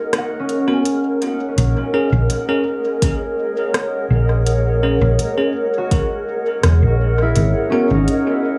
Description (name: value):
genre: ambient dub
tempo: 83 BPM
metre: 4/4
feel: straight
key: unclear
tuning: A4 = 438 Hz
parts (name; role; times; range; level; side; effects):
- granular cloud pad; sustained chords; 0.0-8.6 s; G#4 to F#5; -24 LUFS; equal; built-in reverb
- concert harp; arpeggios; 0.0-8.6 s; C#4 to G#5; -26 LUFS; equal; dub echo
- organic electronic drum kit; drums; 0.1-8.2 s; hi-hat, rim click; -26 LUFS; equal; dub echo
- bell-like tine electric piano; stabs; 0.7-7.9 s; B3 to A#4; -24 LUFS; equal; dub echo
- hollow-body short-scale fingered electric bass; bass; 1.6-8.1 s; E1 to A#1; -18 LUFS; equal; none
- electronic kick drum; drums; 3.0-6.1 s; none; -20 LUFS; equal; none
room: digital ambience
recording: echo-heavy mix, studio ambience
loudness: -18 LUFS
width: mono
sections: 0.0-1.6 A section; 1.6-8.6 B section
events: none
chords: 0.0 G#7sus2; 1.6 A#m7; 7.4 G#m9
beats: 0.13 0.85 | 1.58 2.30 3.02 3.75 | 4.47 5.19 5.92 6.64 | 7.36 8.08